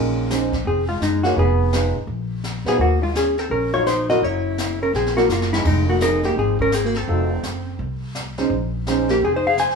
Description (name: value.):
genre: jazz, small-group swing and bop.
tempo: 168 BPM.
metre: 4/4.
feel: swing 63% on 8ths.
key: Bb minor.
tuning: A4 = 437 Hz.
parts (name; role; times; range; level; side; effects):
warm upright piano; accompaniment; 0.0-9.1 s; A#2 to Db5; -23 LUFS; right 2 dB; none.
upright bass; bass; 0.0-9.8 s; F1 to Bb2; -23 LUFS; equal; none.
jazz brush drum kit; drums; 0.3-9.8 s; brushed snare drum, crash cymbal, hi-hat, kick drum, snare drum; -29 LUFS; left 1 dB; none.
hollow-body jazz guitar; melody; 0.7-9.8 s; Eb4 to Ab5; -20 LUFS; left 2 dB; none.
breathy tenor saxophone; second line; 0.7-9.8 s; Ab3 to C5; -26 LUFS; right 2 dB; none.
room: moderate large studio reverb, RT60 0.9 s.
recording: band playing live in one room.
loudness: -18 LUFS.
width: side -5 dB against mid.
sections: 0.0-9.8 A section.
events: drum fill 4.9-5.7.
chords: 0.0 Bbm11; 1.4 Fm7b5; 2.1 Bb5; 2.8 Ebm7; 4.2 Gb7#11; 5.7 Fm7; 7.1 F7b9; 8.5 Bbm11.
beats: 0.30 0.66 1.01 | 1.37 1.73 2.08 2.44 | 2.80 3.15 3.51 3.87 | 4.22 4.58 4.94 5.30 | 5.65 6.01 6.37 6.72 | 7.08 7.44 7.79 8.15 | 8.51 8.87 9.22 9.58.